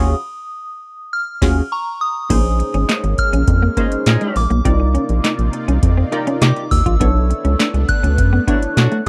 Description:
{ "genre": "early-eighties boogie funk", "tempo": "102 BPM", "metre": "4/4", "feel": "straight", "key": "unclear", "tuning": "A4 = 439 Hz", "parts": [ { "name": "soft synth bell", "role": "melody", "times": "0.0-9.1 s", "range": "Bb5 to F#6", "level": "-26 LUFS", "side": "equal", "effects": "chorus" }, { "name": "funky polysynth comp", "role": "accompaniment", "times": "0.0-9.1 s", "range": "Db4 to D5", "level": "-25 LUFS", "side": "equal", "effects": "chorus" }, { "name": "rubbery square bass", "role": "bass", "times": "0.0-9.1 s", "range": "Ab1 to C3", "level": "-18 LUFS", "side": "equal", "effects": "none" }, { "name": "booming analog drum machine", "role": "drums", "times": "1.4-9.1 s", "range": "crash cymbal, handclaps, hi-hat, kick drum, snare drum", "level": "-20 LUFS", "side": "equal", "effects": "overdrive" }, { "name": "lush unison pad", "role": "sustained chords", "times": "2.7-9.1 s", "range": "C3 to D5", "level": "-30 LUFS", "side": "equal", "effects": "chorus, phaser" }, { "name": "clean electric guitar", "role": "riff", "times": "2.3-9.1 s", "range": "Ab3 to F4", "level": "-24 LUFS", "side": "equal", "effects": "ensemble chorus" }, { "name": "dark horn section", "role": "second line", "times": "3.8-9.0 s", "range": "F#3 to Ab4", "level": "-28 LUFS", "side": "equal", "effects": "none" } ], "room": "little or no reverb", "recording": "dry, close 1970s-style studio recording", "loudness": "-17 LUFS", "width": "mono", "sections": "0.0-2.3 A section; 2.3-9.1 B section", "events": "band accent 0.0-2.3", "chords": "0.0 Ebm11; 2.3 Bbm11; 4.7 Cm11; 7.0 Bm11" }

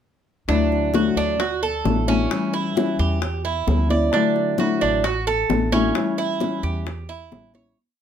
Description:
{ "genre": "latin, Cuban son and guajira", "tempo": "132 BPM", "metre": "4/4", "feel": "straight", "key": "D major", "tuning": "A4 = 440 Hz", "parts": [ { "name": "nylon-string guitar", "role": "accompaniment", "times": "0.5-7.8 s", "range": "D3 to E4", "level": "-22 LUFS", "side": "left 4 dB", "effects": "none" }, { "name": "Cuban tres", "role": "arpeggios", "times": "0.5-7.8 s", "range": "C#4 to D5", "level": "-23 LUFS", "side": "right 5 dB", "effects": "none" }, { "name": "upright bass", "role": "bass", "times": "0.5-7.7 s", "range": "A1 to E2", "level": "-24 LUFS", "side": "right 1 dB", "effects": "none" }, { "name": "bongos", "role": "percussion", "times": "0.5-7.8 s", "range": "none", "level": "-27 LUFS", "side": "left 6 dB", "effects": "none" }, { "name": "congas", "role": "percussion", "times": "0.5-7.8 s", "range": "none", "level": "-28 LUFS", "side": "equal", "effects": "none" } ], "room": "light reverb", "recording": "none", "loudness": "-18 LUFS", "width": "side -8 dB against mid", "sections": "0.5-7.8 montuno (vamp)", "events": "fade-out 6.0-7.8", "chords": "0.5 Dadd9; 2.3 C#dim; 4.1 Dadd9; 6.0 A7" }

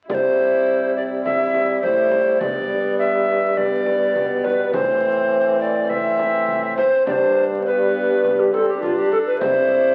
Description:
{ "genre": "classical, renaissance-style consort dance", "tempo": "103 BPM", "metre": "4/4", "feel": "straight", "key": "C major", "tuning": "A4 = 443 Hz", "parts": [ { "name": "mellow tenor recorder", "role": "melody", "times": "0.1-9.9 s", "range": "F4 to E5", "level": "-21 LUFS", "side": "equal", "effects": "none" }, { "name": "warm viola", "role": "second line", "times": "0.1-9.9 s", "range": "B3 to E4", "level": "-31 LUFS", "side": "equal", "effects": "none" }, { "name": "mellow bassoon", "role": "accompaniment", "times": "0.1-9.9 s", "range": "E3 to G3", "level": "-26 LUFS", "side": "equal", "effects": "none" }, { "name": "clear trombone", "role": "bass", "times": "0.1-9.9 s", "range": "G2 to C3", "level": "-29 LUFS", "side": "equal", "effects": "none" }, { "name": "frame drum", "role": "percussion", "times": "0.1-9.7 s", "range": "none", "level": "-36 LUFS", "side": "equal", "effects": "none" } ], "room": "wet recital hall reverb, RT60 1.6 s", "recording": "very old 78 rpm record, vinyl crackle", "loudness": "-19 LUFS", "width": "mono", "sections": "0.1-9.9 A section", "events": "none", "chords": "0.1 C; 2.4 G; 4.7 Am; 7.1 G; 9.4 C" }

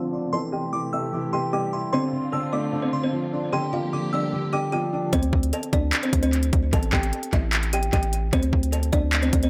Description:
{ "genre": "hip hop, trap", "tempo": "150 BPM", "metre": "4/4", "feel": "half-time", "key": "D minor", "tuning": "A4 = 440 Hz", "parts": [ { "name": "kalimba", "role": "melody", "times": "0.0-9.5 s", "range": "C4 to A5", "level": "-29 LUFS", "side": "equal", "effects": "low-pass filter, tape echo" }, { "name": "dark grand piano", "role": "accompaniment", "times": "0.0-5.1 s", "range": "D3 to E4", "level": "-32 LUFS", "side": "equal", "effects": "low-pass filter, tape echo" }, { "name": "warm symphonic string section", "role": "sustained chords", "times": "0.0-5.1 s", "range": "C3 to G4", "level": "-36 LUFS", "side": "equal", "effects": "low-pass filter" }, { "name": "delicate synth tine bell", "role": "second line", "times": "0.3-5.1 s", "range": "C6 to E6", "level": "-34 LUFS", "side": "equal", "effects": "chorus, tape echo" }, { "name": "long sustained 808-style bass", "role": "bass", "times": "5.1-9.5 s", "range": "A1 to D2", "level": "-26 LUFS", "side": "equal", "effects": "none" }, { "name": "trap drum kit", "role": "drums", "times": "5.1-9.5 s", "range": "handclaps, hi-hat, kick drum", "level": "-26 LUFS", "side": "equal", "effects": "tape echo" } ], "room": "light reverb, small room ambience", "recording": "echo-heavy mix", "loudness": "-24 LUFS", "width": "mono", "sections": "0.0-5.1 A section; 5.1-9.5 B section", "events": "filter sweep 0.0-5.1", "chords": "0.3 Am7; 1.9 Dm7; 3.5 Gm7; 5.1 D5; 6.7 A5; 8.3 D5" }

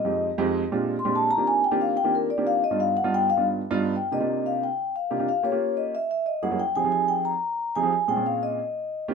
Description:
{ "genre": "jazz", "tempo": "181 BPM", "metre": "4/4", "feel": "straight", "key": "C minor", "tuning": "A4 = 440 Hz", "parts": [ { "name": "vibraphone with soft mallets", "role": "melody", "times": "0.0-9.0 s", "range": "Bb4 to C6", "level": "-24 LUFS", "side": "left 2 dB", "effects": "none" }, { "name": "warm upright piano", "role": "accompaniment", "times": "0.0-9.1 s", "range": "F2 to G#4", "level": "-26 LUFS", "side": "right 4 dB", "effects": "none" } ], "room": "moderate studio reverb, RT60 0.8 s", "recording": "minimal, uncompressed stereo recording", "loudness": "-22 LUFS", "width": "side -5 dB against mid", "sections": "0.0-4.0 A section; 4.0-9.1 B section", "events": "vibraphone solo 0.0-4.0", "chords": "0.0 Fm9; 0.6 Bb13; 1.3 Ebmaj13; 2.6 G7b13; 4.0 Cm11; 5.3 Gm7b5; 5.9 F#13; 6.6 Fm9; 7.9 Bbm9; 8.6 Eb13" }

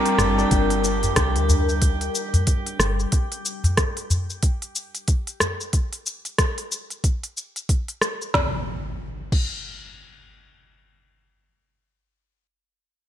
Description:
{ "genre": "organic downtempo", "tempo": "92 BPM", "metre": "4/4", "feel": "swing 60% on 16ths", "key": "G minor", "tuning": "A4 = 440 Hz", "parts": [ { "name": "tine electric piano", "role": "accompaniment", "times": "0.0-0.9 s", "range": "G3 to Bb4", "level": "-27 LUFS", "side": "left 2 dB", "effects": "medium tremolo, sidechain pumping, low-pass filter, ping-pong delay" }, { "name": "airy breathy pad", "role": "sustained chords", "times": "0.0-3.1 s", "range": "G3 to A5", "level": "-27 LUFS", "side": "left 2 dB", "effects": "chorus, sidechain pumping" }, { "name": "kora", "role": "arpeggios", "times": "0.0-1.6 s", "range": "D4 to G5", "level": "-29 LUFS", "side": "right 1 dB", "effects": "low-pass filter, ping-pong delay" }, { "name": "downlifter and impact", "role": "sound effects", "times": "0.0-3.1, 8.3-12.3 s", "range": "none", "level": "-33 LUFS", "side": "equal", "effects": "none" }, { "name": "drifting glass-harmonics texture", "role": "texture", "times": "0.0-3.1 s", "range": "G4 to G5", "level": "-31 LUFS", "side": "right 2 dB", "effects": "chorus, built-in reverb" }, { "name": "organic electronic drum kit", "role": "drums", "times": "0.1-9.5 s", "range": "cabasa, crash cymbal, hi-hat, rim click, snare drum", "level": "-25 LUFS", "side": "equal", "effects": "none" }, { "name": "woody FM bass", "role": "bass", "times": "0.2-3.1 s", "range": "G1 to D2", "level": "-23 LUFS", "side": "equal", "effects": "none" }, { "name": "udu", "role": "percussion", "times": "0.2-5.6 s", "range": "none", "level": "-22 LUFS", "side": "equal", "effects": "none" }, { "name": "electronic kick drum", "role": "drums", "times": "0.5-9.5 s", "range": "none", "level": "-21 LUFS", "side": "equal", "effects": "none" } ], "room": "moderate plate reverb, RT60 1.3 s, digital ambience", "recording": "bright 1980s-style digital production", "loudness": "-20 LUFS", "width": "side -11 dB against mid", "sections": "0.0-8.3 A section; 8.3-10.9 B section", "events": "filter sweep on analog synth pad 0.0-3.1", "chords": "0.0 Gmadd9; 3.1 N.C." }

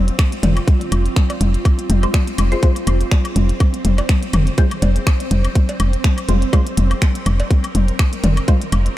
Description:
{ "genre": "minimal techno", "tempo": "123 BPM", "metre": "4/4", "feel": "swing 55% on 16ths", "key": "F minor", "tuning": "A4 = 440 Hz", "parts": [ { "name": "woody FM bass", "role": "bass", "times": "0.0-8.9 s", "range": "F1", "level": "-15 LUFS", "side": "equal", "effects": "sidechain pumping" }, { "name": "swarming drone", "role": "texture", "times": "0.0-9.0 s", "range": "C4 to C5", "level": "-27 LUFS", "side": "right 2 dB", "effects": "built-in reverb, wide subtle chorus, sidechain pumping" }, { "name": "minimal click drum kit", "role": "drums", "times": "0.1-8.9 s", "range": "finger snaps, hi-hat", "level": "-28 LUFS", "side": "equal", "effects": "none" }, { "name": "electronic kick drum", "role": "drums", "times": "0.2-8.6 s", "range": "none", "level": "-14 LUFS", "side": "equal", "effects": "none" }, { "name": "electronic toms, woodblock and cowbell", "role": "percussion", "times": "0.2-8.8 s", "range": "none", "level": "-22 LUFS", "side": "left 3 dB", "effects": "analog delay" }, { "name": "filtered dub chord stab", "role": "stabs", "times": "2.0-8.6 s", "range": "Ab3 to C5", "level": "-29 LUFS", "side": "equal", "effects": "phaser, wide subtle chorus, analog delay" } ], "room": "digital ambience", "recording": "none", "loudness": "-14 LUFS", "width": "side -15 dB against mid", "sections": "0.0-9.0 A section", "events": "none", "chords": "0.0 F5" }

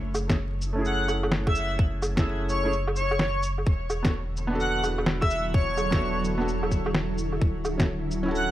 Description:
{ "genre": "future garage", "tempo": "128 BPM", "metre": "4/4", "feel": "swing 64% on 16ths", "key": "F# minor", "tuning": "A4 = 441 Hz", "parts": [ { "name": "warm sub bass", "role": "bass", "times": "0.0-8.5 s", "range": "D1 to F#1", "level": "-30 LUFS", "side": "equal", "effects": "sidechain pumping" }, { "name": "electronic shaker, woodblock and snare drum", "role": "drums", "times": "0.1-8.5 s", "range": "none", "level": "-28 LUFS", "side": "equal", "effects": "studio reverb" }, { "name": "felt-muted upright piano", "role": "accompaniment", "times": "0.3-8.5 s", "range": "A3 to A4", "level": "-31 LUFS", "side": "right 1 dB", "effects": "sidechain pumping, low-pass filter, digital delay" }, { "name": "electronic kick drum", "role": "drums", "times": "0.3-7.9 s", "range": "none", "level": "-24 LUFS", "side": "equal", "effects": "studio reverb" }, { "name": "airy dreamy lead", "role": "melody", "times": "0.9-8.5 s", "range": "C#5 to F#5", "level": "-30 LUFS", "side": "equal", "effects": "chorus, cassette tape, tape echo" }, { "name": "granular cloud pad", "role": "sustained chords", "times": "4.3-8.5 s", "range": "D3 to A4", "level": "-33 LUFS", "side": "equal", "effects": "built-in reverb, vintage 12-bit sampler grit, sidechain pumping" } ], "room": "light reverb", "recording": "vinyl crackle", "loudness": "-23 LUFS", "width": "side -13 dB against mid", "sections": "0.0-8.5 A section", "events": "none", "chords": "0.0 F#m9; 3.7 E9sus4; 7.4 Dmaj9" }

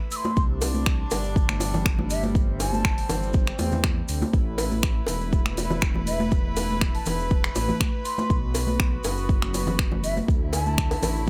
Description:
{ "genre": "afro house", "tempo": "121 BPM", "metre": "4/4", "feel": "straight", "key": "A dorian", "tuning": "A4 = 440 Hz", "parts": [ { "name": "rich chamber string section", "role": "sustained chords", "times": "0.0-11.3 s", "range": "C3 to B4", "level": "-35 LUFS", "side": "equal", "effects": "sidechain pumping" }, { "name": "breathy mellow bansuri", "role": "melody", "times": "0.1-11.2 s", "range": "E5 to E6", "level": "-34 LUFS", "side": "equal", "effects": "dub echo" }, { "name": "deep house drum kit", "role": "drums", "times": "0.1-11.1 s", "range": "finger snaps, hi-hat", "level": "-33 LUFS", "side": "equal", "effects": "none" }, { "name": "maracas", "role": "percussion", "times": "0.1-11.3 s", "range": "none", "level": "-43 LUFS", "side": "equal", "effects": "none" }, { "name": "bongos", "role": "percussion", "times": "0.2-11.1 s", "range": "none", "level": "-34 LUFS", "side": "equal", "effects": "none" }, { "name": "congas", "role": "percussion", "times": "0.2-11.1 s", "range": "none", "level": "-33 LUFS", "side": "equal", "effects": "none" }, { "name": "dark detuned saw bass", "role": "bass", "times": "0.4-11.3 s", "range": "E1 to E2", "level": "-31 LUFS", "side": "equal", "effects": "sidechain pumping" }, { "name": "electronic kick drum", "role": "drums", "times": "0.4-11.3 s", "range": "none", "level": "-26 LUFS", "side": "equal", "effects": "none" } ], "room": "little or no reverb", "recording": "none", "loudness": "-24 LUFS", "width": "mono", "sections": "0.0-11.3 A section", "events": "none", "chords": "0.4 C; 4.3 A5; 8.3 B5; 10.3 D5" }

